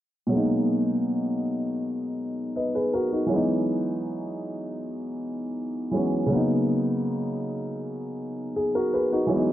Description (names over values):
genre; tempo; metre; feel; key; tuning
R&B; 80 BPM; 4/4; straight; G# minor; A4 = 440 Hz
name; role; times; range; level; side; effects
warm concert grand piano; accompaniment; 0.3-9.5 s; B2 to D#5; -24 LUFS; equal; none
room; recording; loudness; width
moderate concert hall reverb, RT60 2.3 s; low-pass filter; -24 LUFS; side -13 dB against mid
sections
0.3-9.5 A section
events
filter sweep 0.3-9.5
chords
0.3 G#m9; 3.3 Emaj7; 6.3 Bmaj7